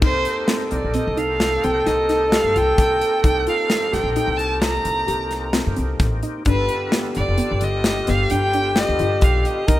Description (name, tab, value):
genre	progressive instrumental, band music in an uneven meter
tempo	130 BPM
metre	7/4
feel	straight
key	C dorian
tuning	A4 = 439 Hz
part	rich violin	melody	0.0-9.8 s	B4 to Bb5	-24 LUFS	equal	digital delay
part	breathy flugelhorn	second line	0.0-9.8 s	G4 to Bb4	-22 LUFS	right 1 dB	digital delay
part	overdriven tonewheel organ	accompaniment	0.0-9.8 s	D3 to A4	-31 LUFS	left 1 dB	chorus vibrato, slow rotary speaker
part	warbly dusty pluck	arpeggios	0.0-9.8 s	D3 to G4	-28 LUFS	left 1 dB	chorus, digital delay
part	upright bass	bass	0.0-9.8 s	F1 to G2	-24 LUFS	equal	none
part	modern studio drum kit	drums	0.0-9.8 s	crash cymbal, hi-hat, kick drum, snare drum	-22 LUFS	left 1 dB	none
room	light reverb, small room reverb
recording	rough home demo mix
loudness	-17 LUFS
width	side -15 dB against mid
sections	0.0-9.8 A section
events	none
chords	0.0 Cm7; 6.5 G7